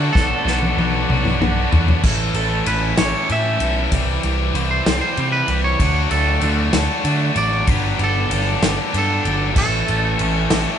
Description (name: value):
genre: indie rock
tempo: 64 BPM (dotted quarters)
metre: 6/8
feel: straight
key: A mixolydian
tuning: A4 = 439 Hz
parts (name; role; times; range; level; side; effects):
- twangy electric guitar; melody; 0.0-10.8 s; A4 to E5; -23 LUFS; right 2 dB; none
- overdriven tine electric piano; second line; 0.0-1.4 s; A5; -37 LUFS; right 9 dB; none
- tonewheel organ; sustained chords; 0.0-2.0, 9.6-10.8 s; A4 to D6; -32 LUFS; right 2 dB; slow rotary speaker
- cranked stack guitar; riff; 0.0-10.8 s; E3 to A4; -25 LUFS; right 8 dB; overdrive
- high-gain distorted guitar; riff; 0.0-10.8 s; E3 to A4; -23 LUFS; left 8 dB; distortion
- overdriven picked electric bass; bass; 0.0-10.6 s; G1 to D3; -21 LUFS; equal; none
- unplugged drum kit; drums; 0.2-10.6 s; crash cymbal, kick drum, ride cymbal, snare drum, toms; -22 LUFS; left 1 dB; none
room: light reverb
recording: band playing live in one room, nothing above 10.8 kHz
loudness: -16 LUFS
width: side -9 dB against mid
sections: 0.0-2.0 A section; 2.0-10.8 B section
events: drum fill 0.2-2.0; clean electric guitar solo 2.0-10.8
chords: 0.2 Bm7; 2.0 A7; 3.9 C; 5.8 D; 7.7 Gmaj7; 9.6 A7